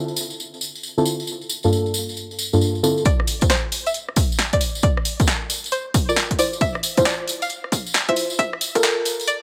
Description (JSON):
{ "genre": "UK garage, two-step garage", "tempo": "135 BPM", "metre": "4/4", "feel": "swing 64% on 16ths", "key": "D minor", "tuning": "A4 = 440 Hz", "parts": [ { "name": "tambourine", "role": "percussion", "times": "0.1-9.4 s", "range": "none", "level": "-29 LUFS", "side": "equal", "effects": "none" }, { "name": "deep mellow chord stab", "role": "stabs", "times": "1.0-9.4 s", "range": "G2 to C5", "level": "-24 LUFS", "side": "equal", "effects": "chorus, cassette tape, delay" }, { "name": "string-like resonator pluck", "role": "melody", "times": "3.1-9.4 s", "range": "C5 to F5", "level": "-28 LUFS", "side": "equal", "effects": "chorus, phaser, delay" }, { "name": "electronic kick drum", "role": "drums", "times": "3.1-8.8 s", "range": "none", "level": "-23 LUFS", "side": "equal", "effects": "none" }, { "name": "punchy analog drum machine", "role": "drums", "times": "3.1-9.4 s", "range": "hi-hat, rim click, snare drum", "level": "-26 LUFS", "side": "equal", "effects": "high-pass filter on hats, high-pass filter on snare" } ], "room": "light reverb", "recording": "high-pass filter", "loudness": "-21 LUFS", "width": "mono", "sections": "0.0-3.1 A section; 3.1-9.4 B section", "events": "build-up 3.1-9.4; filter sweep on synth stab 3.1-9.4", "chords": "0.0 Dm9; 1.3 Gm9; 3.1 Dm9; 4.8 Bbmaj9#11; 6.6 Dm9/E (rootless); 8.4 Fadd11" }